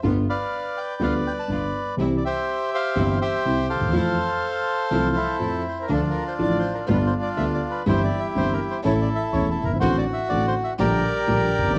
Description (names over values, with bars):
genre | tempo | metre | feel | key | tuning
tango | 123 BPM | 4/4 | rubato | F major, D minor from 5.9 s | A4 = 440 Hz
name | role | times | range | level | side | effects
dark concert grand piano | accompaniment | 0.0-11.8 s | E1 to A4 | -26 LUFS | equal | none
rich chamber string section | stabs | 0.0-11.8 s | A2 to G4 | -34 LUFS | equal | none
bandoneon | melody | 0.3-11.8 s | C4 to A5 | -26 LUFS | equal | none
room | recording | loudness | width
moderate large studio reverb, RT60 1.1 s | dark, warm production | -23 LUFS | mono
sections
0.0-5.9 A section; 5.9-11.8 B section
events
none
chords
0.0 G7; 2.0 C; 3.9 Fmaj7; 5.9 Dm; 6.9 G7; 7.9 C/G; 8.8 A; 9.8 D7/A; 10.8 Gm/Bb